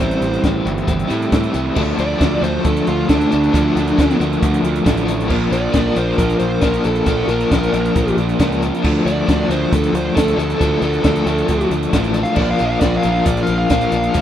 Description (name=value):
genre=indie rock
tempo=136 BPM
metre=4/4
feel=straight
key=D minor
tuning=A4 = 440 Hz
part: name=dark smooth lead guitar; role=melody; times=0.0-14.2 s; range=D4 to F5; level=-21 LUFS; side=right 1 dB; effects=overdrive, slapback echo
part: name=crunchy overdriven guitar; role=riff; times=0.0-14.2 s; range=F3 to E4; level=-20 LUFS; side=left 5 dB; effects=tremolo
part: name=overdriven electric guitar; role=riff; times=0.0-14.2 s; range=A2 to E4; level=-23 LUFS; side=right 7 dB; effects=lush chorus
part: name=fuzz picked electric bass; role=bass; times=0.0-14.2 s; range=G1 to A2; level=-21 LUFS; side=equal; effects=overdrive
part: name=compact cocktail drum kit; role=drums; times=0.0-14.2 s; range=crash cymbal, hi-hat, kick drum, snare drum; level=-20 LUFS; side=equal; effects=none
room=light reverb, small room ambience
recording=rough home demo mix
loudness=-14 LUFS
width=side -10 dB against mid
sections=0.0-1.8 A section; 1.8-14.2 B section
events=lead electric guitar solo 1.8-14.2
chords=0.0 Am7; 1.8 Dm; 5.3 Bb; 8.8 Dm; 12.4 Bb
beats=| 0.00 0.44 0.89 1.33 | 1.77 2.21 2.66 3.10 | 3.54 3.98 4.42 4.87 | 5.31 5.75 6.19 6.63 | 7.07 7.51 7.95 8.40 | 8.84 9.28 9.72 10.16 | 10.61 11.05 11.49 11.93 | 12.38 12.82 13.26 13.71 | 14.15